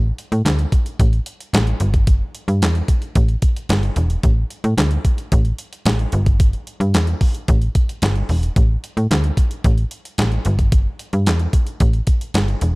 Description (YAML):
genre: early-eighties boogie funk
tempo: 111 BPM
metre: 4/4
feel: straight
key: E minor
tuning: A4 = 440 Hz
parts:
  - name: slap-like FM bass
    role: bass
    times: 0.0-12.8 s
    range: E1 to A2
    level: -17 LUFS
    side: equal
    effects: none
  - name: clean 12-bit digital drum machine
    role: drums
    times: 0.2-12.7 s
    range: handclaps, hi-hat, kick drum, snare drum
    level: -17 LUFS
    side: equal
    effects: none
room: little or no reverb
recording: none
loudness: -16 LUFS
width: side -25 dB against mid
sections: 0.0-12.8 A section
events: none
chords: none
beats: 0.45 0.99 1.53 | 2.07 2.61 3.15 3.69 | 4.24 4.78 5.32 5.86 | 6.40 6.94 7.48 8.02 | 8.56 9.10 9.64 10.18 | 10.72 11.26 11.80 12.34